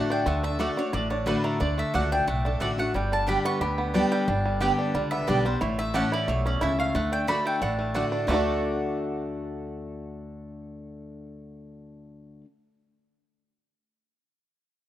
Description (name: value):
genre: bluegrass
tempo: 180 BPM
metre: 4/4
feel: straight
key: D major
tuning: A4 = 439 Hz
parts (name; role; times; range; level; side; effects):
- mandolin; melody; 0.0-12.4 s; A4 to C#6; -31 LUFS; equal; none
- picked steel-string acoustic guitar; accompaniment; 0.0-12.5 s; G2 to G4; -29 LUFS; left 2 dB; none
- bluegrass banjo; arpeggios; 0.0-12.4 s; G3 to A4; -29 LUFS; right 2 dB; none
- mandolin; stabs; 0.0-12.5 s; A3 to A5; -33 LUFS; right 4 dB; none
- upright bass; bass; 0.3-12.4 s; G1 to D2; -32 LUFS; equal; none
room: moderate lush hall reverb, RT60 2.5 s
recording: rough home demo mix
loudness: -23 LUFS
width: side -12 dB against mid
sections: 0.0-8.3 A section; 8.3-10.9 B section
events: none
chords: 0.0 D; 2.9 G; 5.6 A; 7.0 D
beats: | 0.27 0.60 0.94 1.27 | 1.61 1.94 2.28 2.61 | 2.94 3.28 3.61 3.95 | 4.28 4.62 4.95 5.28 | 5.62 5.95 6.29 6.62 | 6.95 7.29 7.62 7.95 | 8.28 8.62 8.95 9.28 | 9.62 9.95 10.28 10.62